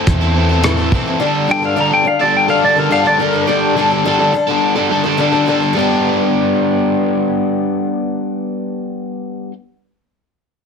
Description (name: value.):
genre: folk rock and heartland rock.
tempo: 106 BPM.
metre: 4/4.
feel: straight.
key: G major.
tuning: A4 = 440 Hz.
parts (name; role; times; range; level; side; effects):
picked old ladder-braced acoustic guitar; accompaniment; 0.0-9.5 s; A2 to A4; -19 LUFS; left 3 dB; plate reverb.
crunchy overdriven guitar; riff; 0.0-9.5 s; A2 to A4; -16 LUFS; equal; none.
fingered electric bass; bass; 0.1-1.0 s; E2; -16 LUFS; equal; none.
cloth-damped thuddy drum kit; drums; 0.1-1.1 s; hi-hat, kick drum, rim click; -18 LUFS; equal; soft clipping on kick.
pedal steel guitar; melody; 1.5-3.8 s; G4 to Bb5; -15 LUFS; left 1 dB; plate reverb.
room: moderate studio reverb, RT60 0.8 s.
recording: dense, heavily limited modern master.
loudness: -13 LUFS.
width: side -6 dB against mid.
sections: 0.0-5.7 A section; 5.7-8.0 B section.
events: pedal steel guitar solo 0.0-5.7.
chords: 0.0 Am; 1.2 Dsus4; 5.7 Gadd9.